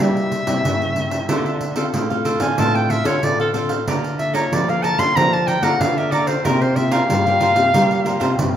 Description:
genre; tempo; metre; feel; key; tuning
samba and choro; 93 BPM; 4/4; straight; unclear; A4 = 438 Hz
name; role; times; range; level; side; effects
bright clarinet; melody; 0.0-8.5 s; A4 to C6; -20 LUFS; equal; none
nylon-string guitar; accompaniment; 0.0-8.6 s; G2 to A4; -24 LUFS; left 4 dB; none
nylon-string guitar; bass; 0.0-8.6 s; A2 to G3; -22 LUFS; right 1 dB; none
pandeiro; percussion; 0.0-8.6 s; none; -24 LUFS; right 2 dB; none
cavaquinho; accompaniment; 1.3-8.3 s; D4 to Bb5; -24 LUFS; right 3 dB; none
room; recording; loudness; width
moderate large studio reverb, RT60 1.4 s; minimal, uncompressed stereo recording; -16 LUFS; side -10 dB against mid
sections
0.0-8.6 A section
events
clarinet solo 0.0-8.6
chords
0.0 C7; 1.3 Dm7; 3.9 Bbmaj7/D; 6.5 C7sus4

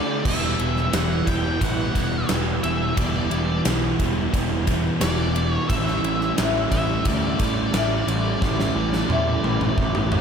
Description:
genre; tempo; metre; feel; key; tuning
rock, shoegaze and dream pop; 88 BPM; 4/4; straight; unclear; A4 = 440 Hz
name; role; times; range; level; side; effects
octave-fuzz lead guitar; melody; 0.0-10.2 s; D5 to G5; -29 LUFS; left 1 dB; distortion, analog delay
fingerpicked twelve-string acoustic guitar; arpeggios; 0.0-0.3, 5.7-10.2 s; E4 to A4; -30 LUFS; left 5 dB; lush chorus, analog delay
overdriven semi-hollow guitar; riff; 0.0-10.2 s; A2 to E4; -26 LUFS; right 9 dB; reverse reverb
thick fuzz guitar; riff; 0.0-10.2 s; E2 to D4; -27 LUFS; left 8 dB; distortion, analog chorus
growling picked electric bass; bass; 0.3-10.2 s; E1 to E2; -27 LUFS; equal; overdrive
gated 80s drum kit; drums; 0.3-10.2 s; crash cymbal, kick drum, ride cymbal, snare drum, toms; -26 LUFS; equal; none
room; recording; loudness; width
moderate plate reverb, RT60 2.9 s; dreamy mix soaked in reverb; -20 LUFS; side -7 dB against mid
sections
0.3-10.2 A section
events
drum fill 8.4-10.2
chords
0.3 Em7; 5.7 A7sus4

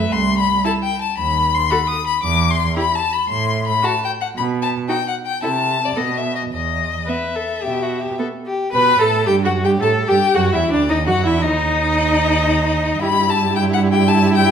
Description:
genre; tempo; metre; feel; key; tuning
quick classical-period movement for string quartet; 112 BPM; 4/4; straight; E minor; A4 = 440 Hz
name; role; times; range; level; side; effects
clear violin; melody; 0.0-14.5 s; D5 to D#6; -19 LUFS; left 6 dB; none
rich violin; second line; 0.0-14.5 s; D4 to B4; -22 LUFS; left 3 dB; none
warm viola; accompaniment; 0.0-14.5 s; A3 to B4; -22 LUFS; right 3 dB; none
rich cello; bass; 0.0-14.5 s; C2 to C3; -21 LUFS; right 4 dB; none
room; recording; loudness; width
wet recital hall reverb, RT60 1.3 s; none; -15 LUFS; side -8 dB against mid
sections
0.0-8.7 A section; 8.7-14.5 B section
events
none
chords
0.1 Am/C; 1.2 B/D#; 2.2 E5; 3.3 Am; 4.4 N.C.; 5.4 Am/C; 6.0 B; 6.5 Em; 8.7 Em (rootless); 10.9 D#m; 13.0 Em/G

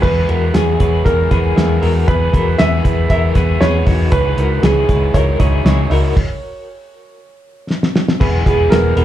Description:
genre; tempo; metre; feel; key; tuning
jangly indie pop; 118 BPM; 4/4; straight; unclear; A4 = 440 Hz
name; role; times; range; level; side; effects
warm upright piano; melody; 0.0-9.0 s; G#4 to E5; -19 LUFS; right 2 dB; slapback echo
crunchy overdriven guitar; accompaniment; 0.0-9.0 s; E2 to E4; -26 LUFS; right 8 dB; slapback echo
reed electric piano; accompaniment; 0.0-9.0 s; B3 to D#5; -24 LUFS; right 4 dB; harmonic tremolo, slapback echo
electric guitar through a small old amp; arpeggios; 0.0-9.0 s; D#4 to B4; -23 LUFS; left 6 dB; tremolo, slapback echo, analog delay
vintage muted fingered electric bass; bass; 0.0-9.0 s; E1 to E2; -16 LUFS; left 1 dB; none
cloth-damped thuddy drum kit; drums; 0.0-9.0 s; crash cymbal, hi-hat, kick drum, snare drum; -16 LUFS; equal; none
room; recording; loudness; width
light reverb; live gig heard through the venue's PA, club reverb; -12 LUFS; side -12 dB against mid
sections
0.0-8.2 A section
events
stop 6.2-8.2; drum fill 7.7-8.2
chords
0.0 E; 4.1 C#madd9; 8.2 E

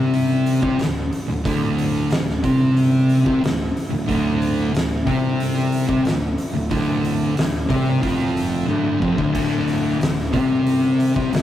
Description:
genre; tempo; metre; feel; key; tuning
stoner and doom metal; 91 BPM; 4/4; straight; D minor; A4 = 441 Hz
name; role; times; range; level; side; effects
analog drone; sustained chords; 1.1-11.4 s; D3 to E4; -35 LUFS; equal; none
thick fuzz guitar; riff; 0.0-11.4 s; D2 to C4; -21 LUFS; left 4 dB; distortion
thick fuzz guitar; riff; 0.0-11.4 s; D2 to C4; -22 LUFS; right 3 dB; distortion
fuzz fingered electric bass; bass; 0.0-11.4 s; D1 to C2; -29 LUFS; equal; overdrive
oversized low-tuned drum kit; drums; 0.1-11.4 s; crash cymbal, hi-hat, kick drum, snare drum, toms; -24 LUFS; equal; none
room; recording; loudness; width
moderate studio ambience, RT60 0.5 s; rough rehearsal-room recording, tube saturation; -17 LUFS; side -12 dB against mid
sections
0.0-11.4 A section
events
drum fill 8.7-9.3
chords
0.0 Dm

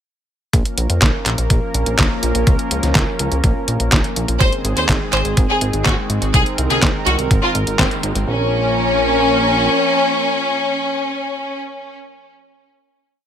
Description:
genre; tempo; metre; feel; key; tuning
italo disco; 124 BPM; 4/4; straight; Bb minor; A4 = 437 Hz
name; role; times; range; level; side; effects
warm analog pad; sustained chords; 0.5-11.6 s; Eb3 to Bb4; -22 LUFS; right 1 dB; chorus
chorused synth bass; bass; 0.5-9.7 s; Ab1 to F2; -20 LUFS; equal; none
detuned 8-bit digital drum machine; drums; 0.5-8.3 s; handclaps, hi-hat, snare drum; -20 LUFS; equal; overdrive
electronic kick drum; drums; 0.5-7.9 s; none; -17 LUFS; equal; overdrive
bright studio violin section; melody; 4.4-11.6 s; C4 to C5; -18 LUFS; left 1 dB; digital delay
room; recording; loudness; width
light reverb, digital ambience; none; -14 LUFS; side -9 dB against mid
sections
0.5-8.3 verse; 8.3-12.1 final chord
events
band accent 7.8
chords
0.5 Bbm; 4.4 Ab; 8.3 Bbm

